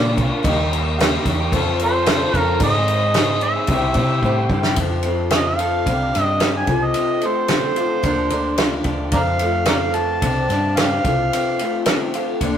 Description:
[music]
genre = folk rock and heartland rock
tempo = 110 BPM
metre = 4/4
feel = straight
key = F major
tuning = A4 = 438 Hz
[part]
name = overdriven harmonica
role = melody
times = 0.0-11.8 s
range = Bb4 to A5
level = -21 LUFS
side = right 1 dB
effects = none
[part]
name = picked twelve-string acoustic guitar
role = accompaniment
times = 0.0-12.6 s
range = Ab2 to Bb4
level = -24 LUFS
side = left 3 dB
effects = none
[part]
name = warm upright piano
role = accompaniment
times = 0.0-4.7 s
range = Eb4 to C6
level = -33 LUFS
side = right 2 dB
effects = none
[part]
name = bright tonewheel organ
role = sustained chords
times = 0.0-4.8 s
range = C4 to Eb5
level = -36 LUFS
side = left 1 dB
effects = none
[part]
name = electric guitar through a small old amp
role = riff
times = 0.0-12.6 s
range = F2 to A4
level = -26 LUFS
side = right 2 dB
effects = none
[part]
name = hollow-body short-scale picked electric bass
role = bass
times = 0.0-12.6 s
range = C2 to C3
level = -24 LUFS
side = equal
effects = none
[part]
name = natural country drum kit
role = drums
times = 0.2-12.5 s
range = crash cymbal, kick drum, ride cymbal, snare drum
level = -21 LUFS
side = equal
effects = none
[sound]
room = moderate stone room reverb, RT60 1.2 s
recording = rough rehearsal-room recording, warm saturation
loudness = -16 LUFS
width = side -9 dB against mid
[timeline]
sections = 0.0-4.8 A section; 4.8-12.6 B section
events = upright piano fill 4.0-4.8; drum fill 4.2-4.8; harmonica solo 4.8-12.6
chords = 0.4 Eb; 1.5 F; 2.6 Ab; 3.7 C; 4.8 F; 5.9 Csus2; 6.7 F/C; 8.0 Bb/D; 9.1 F; 10.2 Csus2; 11.0 F/C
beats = | 0.45 0.98 1.53 2.07 | 2.61 3.15 3.69 4.24 | 4.78 5.32 5.87 6.41 | 6.96 7.50 8.05 8.59 | 9.14 9.69 10.23 10.78 | 11.32 11.86 12.41

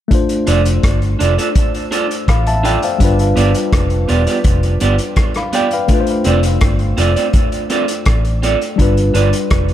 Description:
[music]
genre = lovers rock reggae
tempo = 83 BPM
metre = 4/4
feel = straight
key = F lydian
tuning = A4 = 439 Hz
[part]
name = tine electric piano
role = accompaniment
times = 0.1-9.7 s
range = G3 to B5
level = -18 LUFS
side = left 3 dB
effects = auto-pan, dub echo
[part]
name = vintage drum kit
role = drums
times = 0.1-9.7 s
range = hi-hat, kick drum, rim click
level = -17 LUFS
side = equal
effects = none
[part]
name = electric guitar through a small old amp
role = stabs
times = 0.5-9.3 s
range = B3 to D5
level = -19 LUFS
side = right 5 dB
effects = spring reverb, dub echo
[part]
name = vintage muted fingered electric bass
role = bass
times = 0.5-9.7 s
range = E1 to A1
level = -15 LUFS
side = equal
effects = none
[sound]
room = studio ambience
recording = none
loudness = -12 LUFS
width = side -12 dB against mid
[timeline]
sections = 0.1-5.9 A section; 5.9-9.7 B section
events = none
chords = 0.1 F6; 3.0 G7; 5.9 F6; 8.8 G7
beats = | 0.11 0.83 1.56 2.28 | 3.00 3.73 4.45 5.17 | 5.90 6.62 7.34 8.07 | 8.79 9.52

